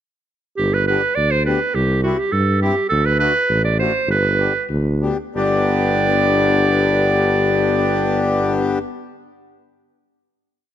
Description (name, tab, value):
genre	alpine folk, alpine dance band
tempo	89-104 BPM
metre	2/4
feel	straight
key	G major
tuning	A4 = 440 Hz
part	bright clarinet	melody	0.6-8.8 s	F#4 to D5	-19 LUFS	right 4 dB	none
part	mellow tuba	bass	0.6-8.8 s	G1 to G2	-20 LUFS	equal	none
part	accordion	accompaniment	0.9-8.8 s	A3 to G4	-21 LUFS	left 5 dB	none
room	light reverb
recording	close, detailed microphones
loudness	-15 LUFS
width	side -10 dB against mid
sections	0.6-5.4 A section; 5.4-8.0 final chord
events	slowing down 2.9-5.4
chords	0.6 G; 1.7 C; 2.9 D; 4.1 G